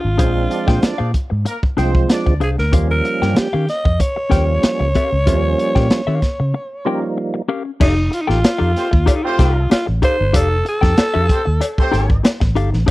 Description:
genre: funk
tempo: 95 BPM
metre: 4/4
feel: straight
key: F mixolydian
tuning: A4 = 439 Hz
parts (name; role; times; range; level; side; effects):
- breathy alto saxophone; melody; 0.0-11.9 s; Eb4 to Eb5; -20 LUFS; equal; none
- mellow electric guitar; accompaniment; 0.0-12.9 s; Db4 to G5; -22 LUFS; left 6 dB; none
- vintage muted fingered electric bass; bass; 0.0-12.9 s; F1 to Eb3; -18 LUFS; equal; none
- percussive tonewheel organ; stabs; 0.2-7.4 s; F3 to F4; -21 LUFS; right 4 dB; chorus vibrato, slow rotary speaker
- crunchy breakbeat drum kit; drums; 0.2-12.9 s; crash cymbal, hi-hat, kick drum, snare drum; -17 LUFS; equal; none
- mellow horn section; second line; 0.5-2.4, 8.8-12.2 s; A3 to D5; -24 LUFS; right 1 dB; none
- cowbell; percussion; 7.8-12.9 s; none; -26 LUFS; left 4 dB; none
room: small room ambience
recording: dry, close 1970s-style studio recording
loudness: -14 LUFS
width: side -18 dB against mid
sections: 0.0-7.8 A section; 7.8-12.9 B section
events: break 6.5-7.8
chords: 0.0 Bb9; 2.7 Eb9; 7.8 F9

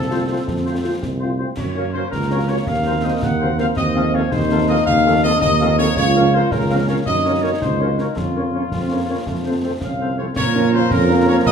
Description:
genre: military-style march for wind band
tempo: 109 BPM (dotted quarters)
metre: 6/8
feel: straight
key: Bb minor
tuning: A4 = 440 Hz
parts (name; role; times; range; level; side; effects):
- bright trumpet section; melody; 0.0-11.5 s; F4 to Gb5; -22 LUFS; left 2 dB; none
- clear euphonium; second line; 0.0-11.5 s; A3 to F4; -24 LUFS; right 1 dB; none
- mellow tuba; bass; 0.0-11.5 s; C2 to Bb2; -20 LUFS; right 2 dB; none
- mellow woodwind section; second line; 0.1-11.5 s; F4 to F5; -27 LUFS; equal; none
- dark French horn section; accompaniment; 0.1-11.3 s; F3 to F4; -25 LUFS; left 3 dB; none
- concert snare drum, concert bass drum and clash cymbals; drums; 0.5-11.5 s; none; -26 LUFS; left 1 dB; none
- mellow trombone section; sustained chords; 10.4-11.5 s; F3 to Bb3; -21 LUFS; right 5 dB; none
room: wet large studio reverb, RT60 1.3 s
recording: small room ambience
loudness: -16 LUFS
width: side -7 dB against mid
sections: 0.0-10.4 A section; 10.4-11.5 A section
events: none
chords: 0.0 F; 1.6 Gb; 2.7 Cm7b5/Eb; 3.8 F7/Eb; 6.0 Bbm/Db; 7.1 Gb; 8.2 Bbm/F; 9.3 F; 10.4 Bbm

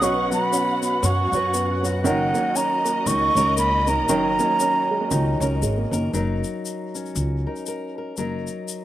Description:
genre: acoustic folk duo or small band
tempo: 118 BPM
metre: 4/4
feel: swing 58% on 8ths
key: unclear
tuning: A4 = 440 Hz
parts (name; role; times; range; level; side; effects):
- wooden flute; melody; 0.0-5.6 s; F#5 to C#6; -22 LUFS; right 2 dB; slapback echo
- fingerpicked steel-string acoustic guitar; accompaniment; 0.0-8.8 s; B2 to B4; -28 LUFS; left 3 dB; slapback echo
- dark chamber string section; sustained chords; 0.0-6.1 s; C#4 to F#5; -30 LUFS; left 2 dB; none
- warm upright piano; arpeggios; 0.0-6.2 s; D#3 to C#4; -26 LUFS; right 4 dB; slapback echo
- upright bass; bass; 0.0-8.5 s; F#1 to F#2; -24 LUFS; equal; none
- tube shaker; percussion; 0.0-8.8 s; none; -30 LUFS; left 8 dB; none
room: little or no reverb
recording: recorded outdoors, with no room sound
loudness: -20 LUFS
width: side -13 dB against mid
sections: 0.0-6.1 A section; 6.1-8.8 B section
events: none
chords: 0.0 Bsus2; 2.1 F#6

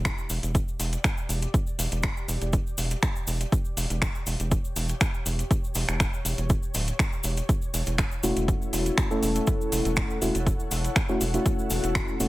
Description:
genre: deep house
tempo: 121 BPM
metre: 4/4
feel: swing 53% on 16ths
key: E dorian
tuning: A4 = 440 Hz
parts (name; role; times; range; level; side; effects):
- rubbery square bass; bass; 0.0-12.3 s; D1 to E1; -28 LUFS; equal; none
- ethereal airy pad; texture; 0.9-12.3 s; E4 to F#5; -39 LUFS; equal; ensemble chorus, built-in reverb, sidechain pumping
- deep house drum kit; drums; 0.1-12.3 s; finger snaps, hi-hat; -30 LUFS; equal; overdrive, soft clipping on snare
- electronic kick drum; drums; 0.1-12.1 s; none; -26 LUFS; equal; none
- cabasa; percussion; 0.1-12.3 s; none; -36 LUFS; left 1 dB; none
- mellow FM electric piano; stabs; 8.2-12.3 s; A3 to A4; -28 LUFS; left 1 dB; chorus, sidechain pumping, tape echo
room: digital ambience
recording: dense, heavily limited modern master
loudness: -24 LUFS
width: side -18 dB against mid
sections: 0.0-12.3 A section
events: fade-in on ambient pad 0.0-12.3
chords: 0.0 Em7; 7.5 F#m7/E

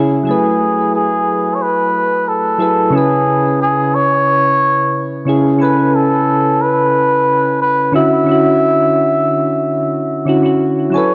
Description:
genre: chillout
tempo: 90 BPM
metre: 4/4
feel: straight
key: F# minor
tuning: A4 = 440 Hz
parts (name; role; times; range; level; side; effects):
- soft electric-piano-like synth keys; accompaniment; 0.0-11.1 s; C#3 to G#5; -17 LUFS; equal; chorus, tremolo
- trumpet with cup mute; melody; 0.3-11.1 s; G#4 to E5; -17 LUFS; equal; delay
room: moderate lush hall reverb, RT60 2.6 s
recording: worn, warbling old tape, cassette tape, warbly pitch drift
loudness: -14 LUFS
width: mono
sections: 0.3-11.1 A section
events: none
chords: 0.3 F#m11; 2.9 C#m7; 5.6 Amaj9/C#; 7.9 Dmaj9

